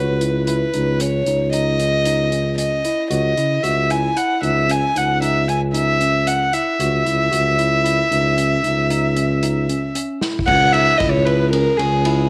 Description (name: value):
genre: progressive instrumental, band music in an uneven meter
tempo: 114 BPM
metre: 7/4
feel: straight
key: C# minor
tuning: A4 = 440 Hz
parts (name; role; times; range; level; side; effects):
- dark violin; melody; 0.0-12.3 s; G#4 to G#5; -21 LUFS; equal; none
- tine electric piano; arpeggios; 0.0-12.3 s; C#4 to F#4; -28 LUFS; equal; none
- mellow tuba; bass; 0.0-12.3 s; C#2 to C#3; -22 LUFS; equal; none
- vintage drum kit; drums; 0.2-12.2 s; crash cymbal, hi-hat, kick drum, ride cymbal, snare drum; -30 LUFS; equal; none
room: moderate spring reverb, RT60 1.2 s, small room reverb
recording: none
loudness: -18 LUFS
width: mono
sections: 0.0-10.5 A section; 10.5-12.3 B section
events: drum fill 10.2; violin solo 10.5-12.3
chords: 0.0 C#madd9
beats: 0.47 1.00 1.53 2.06 2.58 | 3.11 3.63 4.16 4.69 5.21 5.74 6.27 | 6.79 7.32 7.85 8.37 8.90 9.43 9.95 | 10.48 11.00 11.53 12.05